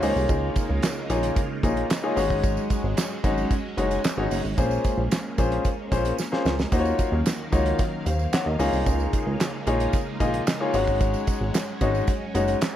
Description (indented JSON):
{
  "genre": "early-eighties boogie funk",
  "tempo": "112 BPM",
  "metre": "4/4",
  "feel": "straight",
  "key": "unclear",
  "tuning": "A4 = 441 Hz",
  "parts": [
    { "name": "clear concert grand piano", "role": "accompaniment", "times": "0.0-12.6 s", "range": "Ab3 to Gb5", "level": "-26 LUFS", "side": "left 3 dB", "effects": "none" },
    { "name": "phased string machine", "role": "sustained chords", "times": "0.0-12.8 s", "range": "Db3 to F5", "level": "-33 LUFS", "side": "right 1 dB", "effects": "ensemble chorus, phaser" },
    { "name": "chorused synth bass", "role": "bass", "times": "0.0-12.6 s", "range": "Gb1 to Eb2", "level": "-27 LUFS", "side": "equal", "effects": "none" },
    { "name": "damped 70s drum kit", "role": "drums", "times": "0.0-12.7 s", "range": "handclaps, hi-hat, kick drum, snare drum", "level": "-26 LUFS", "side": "right 1 dB", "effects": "none" },
    { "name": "tambourine", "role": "percussion", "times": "0.0-12.7 s", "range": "none", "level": "-42 LUFS", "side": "right 11 dB", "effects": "none" }
  ],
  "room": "light reverb",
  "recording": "none",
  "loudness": "-22 LUFS",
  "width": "side -11 dB against mid",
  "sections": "0.0-12.8 A section",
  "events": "drum fill 6.2-6.7",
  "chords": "0.0 Db69; 2.2 Ab7sus4; 4.6 Bbm9; 6.7 Ebm9; 8.6 Db69; 10.7 Ab7sus4",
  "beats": "| 0.29 0.83 1.36 1.90 | 2.44 2.97 3.51 4.04 | 4.58 5.11 5.65 6.19 | 6.72 7.26 7.79 8.33 | 8.86 9.40 9.94 10.47 | 11.01 11.54 12.08 12.61"
}